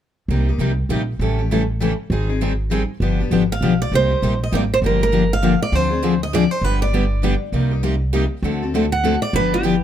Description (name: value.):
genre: acoustic string swing (jazz manouche).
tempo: 199 BPM.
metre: 3/4.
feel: swing 59% on 8ths.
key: C minor.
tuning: A4 = 441 Hz.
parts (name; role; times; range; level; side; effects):
picked steel-string acoustic guitar; accompaniment; 0.3-9.8 s; C3 to A4; -22 LUFS; left 7 dB; none.
picked steel-string acoustic guitar; accompaniment; 0.3-9.8 s; C3 to A4; -25 LUFS; right 6 dB; none.
upright bass; bass; 0.3-9.8 s; G1 to D2; -21 LUFS; right 1 dB; none.
picked steel-string acoustic guitar; melody; 3.5-9.8 s; G4 to F#5; -21 LUFS; right 3 dB; plate reverb.
room: light reverb.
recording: none.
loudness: -16 LUFS.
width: side -10 dB against mid.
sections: 0.3-3.9 A section; 3.9-9.8 B section.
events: none.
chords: 0.3 Cm7; 1.2 A7; 2.1 Abmaj7; 3.0 G7b9; 3.9 Cm7; 4.8 Gm7; 5.7 Dm7b5; 6.6 G; 7.5 Cm7; 8.4 D7.